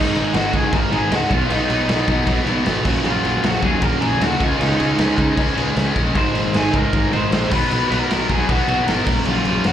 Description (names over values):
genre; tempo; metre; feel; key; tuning
punk rock; 155 BPM; 4/4; straight; unclear; A4 = 440 Hz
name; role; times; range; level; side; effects
lead guitar through a small cranked amp; melody; 0.0-9.7 s; Eb4 to C6; -23 LUFS; equal; overdrive, slapback echo, ping-pong delay
cranked stack guitar; riff; 0.0-9.7 s; Gb2 to Db4; -24 LUFS; left 9 dB; overdrive, slapback echo
distorted electric guitar; riff; 0.0-9.7 s; Gb2 to Db4; -25 LUFS; right 7 dB; distortion, slapback echo
fuzz guitar; riff; 0.0-9.7 s; Gb2 to Db4; -25 LUFS; right 1 dB; distortion
modern bright picked electric bass; bass; 0.0-9.7 s; Ab1 to Eb2; -24 LUFS; equal; none
raw garage drum kit; drums; 0.2-9.7 s; crash cymbal, kick drum, snare drum; -21 LUFS; equal; none
room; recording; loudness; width
light reverb; live gig heard through the venue's PA, club reverb; -16 LUFS; side -10 dB against mid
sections
0.0-9.7 A section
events
none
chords
0.0 Ab5; 1.3 B; 2.9 Gb/Bb; 4.4 Db; 6.2 Ab; 7.5 B5; 9.1 Gb/Bb